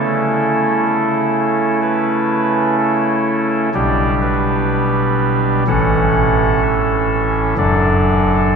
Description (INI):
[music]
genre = classical, chorale-style piece for pipe organ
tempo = 63 BPM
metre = 4/4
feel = rubato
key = unclear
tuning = A4 = 440 Hz
[part]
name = chamber organ, soft reed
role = solo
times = 0.0-8.6 s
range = F#1 to F#5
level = -13 LUFS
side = equal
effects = none
[sound]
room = wet cathedral reverb, RT60 6.8 s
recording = heard from further back in the room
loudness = -13 LUFS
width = side -6 dB against mid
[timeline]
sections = 0.0-8.6 A section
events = none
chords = 0.0 A/C#; 3.7 G/B; 5.7 A; 7.6 D/F#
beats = 0.87 1.82 2.79 | 3.74 4.69 5.67 6.63 | 7.58 8.53